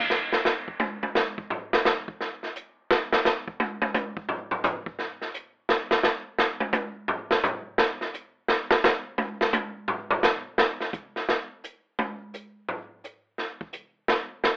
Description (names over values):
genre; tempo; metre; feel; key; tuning
jazz; 172 BPM; 4/4; swing 64% on 8ths; none; none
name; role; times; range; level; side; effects
open jazz drum kit; drums; 0.1-14.5 s; hi-hat, kick drum, snare drum, toms; -23 LUFS; equal; none
room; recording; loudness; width
moderate studio reverb, RT60 0.5 s; telephone sound; -24 LUFS; side -25 dB against mid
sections
0.1-11.3 A section; 11.3-14.6 A section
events
drum solo 0.1-14.6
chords
none